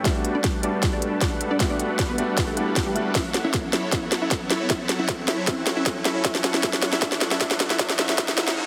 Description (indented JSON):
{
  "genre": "future bass",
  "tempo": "155 BPM",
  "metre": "4/4",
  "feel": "half-time",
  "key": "unclear",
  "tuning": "A4 = 440 Hz",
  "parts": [
    { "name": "unison pluck", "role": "melody", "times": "0.0-8.6 s", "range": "G3 to E5", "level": "-32 LUFS", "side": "equal", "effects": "sidechain pumping, tape echo" },
    { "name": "warm grand piano", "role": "accompaniment", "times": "0.0-3.2 s", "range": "G3 to F#4", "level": "-30 LUFS", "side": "equal", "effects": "sidechain pumping" },
    { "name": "supersaw chords", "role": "riff", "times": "0.0-8.7 s", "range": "F#3 to B5", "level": "-32 LUFS", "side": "equal", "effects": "vintage 12-bit sampler grit, sidechain pumping, low-pass filter" },
    { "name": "riser and reverse cymbal", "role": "sound effects", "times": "1.3-8.7 s", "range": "none", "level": "-37 LUFS", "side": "equal", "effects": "none" },
    { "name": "electronic kick drum", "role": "drums", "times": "0.1-8.3 s", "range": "none", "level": "-30 LUFS", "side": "equal", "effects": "none" },
    { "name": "trap drum kit", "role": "drums", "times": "0.1-8.6 s", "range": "hi-hat, snare drum", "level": "-27 LUFS", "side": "equal", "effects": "none" },
    { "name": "thumb-piano-like synth pluck", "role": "arpeggios", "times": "3.1-8.4 s", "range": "C#4 to C#5", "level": "-37 LUFS", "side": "equal", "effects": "none" }
  ],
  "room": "moderate lush hall reverb, RT60 2.2 s",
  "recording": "heavily compressed radio sound, multiband compression, high-pass filter",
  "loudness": "-23 LUFS",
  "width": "mono",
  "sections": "0.0-8.7 A section",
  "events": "build-up 0.0-8.7; drum fill 0.0-8.6; filter sweep on supersaw synth 0.0-8.7; filter sweep on synth pluck 0.0-8.7; filter sweep 0.0-8.7",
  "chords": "0.1 Gmaj7; 3.1 F#m7; 6.2 Esus2",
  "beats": "| 0.05 0.44 0.83 1.22 | 1.60 1.99 2.38 2.76 | 3.15 3.54 3.92 4.31 | 4.70 5.09 5.47 5.86 | 6.25 6.63 7.02 7.41 | 7.80 8.18 8.57"
}